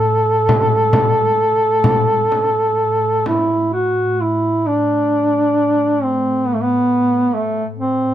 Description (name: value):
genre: caucasian folk, Caucasian lament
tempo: 66 BPM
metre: 4/4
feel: rubato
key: A dorian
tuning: A4 = 438 Hz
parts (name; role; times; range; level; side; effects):
- dark duduk; melody; 0.0-8.1 s; A3 to A4; -15 LUFS; right 1 dB; none
- glassy FM pad; drone; 0.0-8.1 s; A2; -24 LUFS; left 1 dB; ensemble chorus, built-in reverb
- frame drum; percussion; 0.5-3.5 s; none; -19 LUFS; left 2 dB; none
room: light reverb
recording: close, detailed microphones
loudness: -14 LUFS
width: side -11 dB against mid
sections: 0.0-4.2 A section; 4.2-8.1 B section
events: none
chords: none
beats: | 0.48 1.38 2.31 3.27 | 4.20 5.12 6.02 6.90 | 7.78